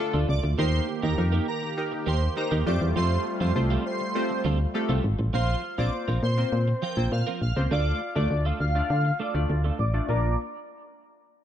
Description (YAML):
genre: pop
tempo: 101 BPM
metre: 4/4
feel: straight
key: Bb major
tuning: A4 = 440 Hz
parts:
  - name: chorused retro synth keys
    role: accompaniment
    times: 0.0-10.4 s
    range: A3 to D5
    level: -32 LUFS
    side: left 1 dB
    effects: low-pass filter
  - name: warm analog pad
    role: sustained chords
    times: 0.0-5.3 s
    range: D3 to G4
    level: -33 LUFS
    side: right 1 dB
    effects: chorus
  - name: twelve-string electric guitar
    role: riff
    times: 0.0-10.3 s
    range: F3 to Bb4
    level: -35 LUFS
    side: right 7 dB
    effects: analog chorus, low-pass filter
  - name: solid FM bass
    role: bass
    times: 0.1-10.4 s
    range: Ab1 to D3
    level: -24 LUFS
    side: equal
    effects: none
  - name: airy dreamy lead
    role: melody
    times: 0.3-10.4 s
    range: Bb4 to G5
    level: -33 LUFS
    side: right 3 dB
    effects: chorus, low-pass filter, tape echo
  - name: soft octave-layered synth lead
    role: melody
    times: 5.3-10.4 s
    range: C5 to Bb5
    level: -32 LUFS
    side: left 4 dB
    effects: chorus, low-pass filter, tape echo
room: light reverb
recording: dark, warm production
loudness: -23 LUFS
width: side -10 dB against mid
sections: 0.0-5.3 A section; 5.3-10.1 B section; 10.1-11.4 C section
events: drop 0.0-5.3; filter sweep 5.3-10.1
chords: 0.0 Dm; 0.6 Eb; 2.7 Fadd9; 5.3 Bbsus2; 7.7 Dm; 10.1 Bb